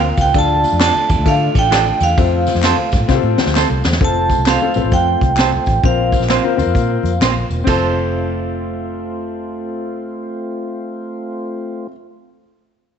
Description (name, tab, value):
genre	uptempo 1960s-style soul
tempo	131 BPM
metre	4/4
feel	swing 64% on 8ths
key	F major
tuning	A4 = 439 Hz
part	vibraphone with hard mallets	melody	0.0-7.2 s	F5 to A5	-18 LUFS	right 4 dB	none
part	tonewheel organ	sustained chords	0.0-11.9 s	A3 to F4	-26 LUFS	equal	slow rotary speaker
part	vintage muted fingered electric bass	bass	0.0-11.9 s	E1 to D3	-19 LUFS	equal	none
part	congas	percussion	0.0-7.9 s	none	-32 LUFS	left 7 dB	none
part	vintage brush drum kit	drums	0.2-7.8 s	crash cymbal, hi-hat, kick drum, ride cymbal, snare drum, toms	-18 LUFS	equal	none
part	tambourine and handclaps	percussion	0.2-7.9 s	none	-30 LUFS	left 10 dB	none
part	warm concert grand piano	accompaniment	0.3-11.9 s	C4 to F5	-22 LUFS	left 10 dB	none
part	semi-hollow electric guitar	stabs	0.8-12.0 s	Bb3 to D5	-22 LUFS	right 12 dB	slapback echo
room	moderate echo chamber reverb, RT60 1.5 s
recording	1960s-style stereo with parts hard left and right, nothing above 8.0 kHz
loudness	-13 LUFS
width	side -8 dB against mid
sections	0.0-4.0 A section; 4.0-7.7 B section; 7.7-11.3 C section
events	drum fill 3.1-4.0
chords	0.3 Dm; 2.2 F; 5.8 Bbsus2; 7.7 F